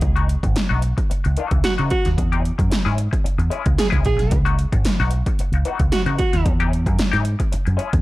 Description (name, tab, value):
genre	funk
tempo	112 BPM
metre	4/4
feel	straight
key	C# minor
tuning	A4 = 440 Hz
part	semi-hollow electric guitar	accompaniment	0.0-8.0 s	E3 to G#4	-27 LUFS	left 6 dB	wah
part	picked electric bass with an envelope filter	bass	0.0-8.0 s	G#1 to C#3	-20 LUFS	equal	none
part	80s electronic pad drums	drums	0.0-8.0 s	hi-hat, kick drum, snare drum	-20 LUFS	equal	overdrive
part	warm tenor saxophone	second line	1.6-6.5 s	F#4 to G#4	-24 LUFS	right 3 dB	none
room	little or no reverb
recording	none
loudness	-17 LUFS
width	side -18 dB against mid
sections	0.0-8.0 A section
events	none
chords	0.0 C#m11; 2.2 E6; 4.3 C#m11; 6.5 E6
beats	| 0.03 0.56 1.10 1.64 | 2.18 2.72 3.25 3.79 | 4.32 4.86 5.39 5.93 | 6.46 6.99 7.53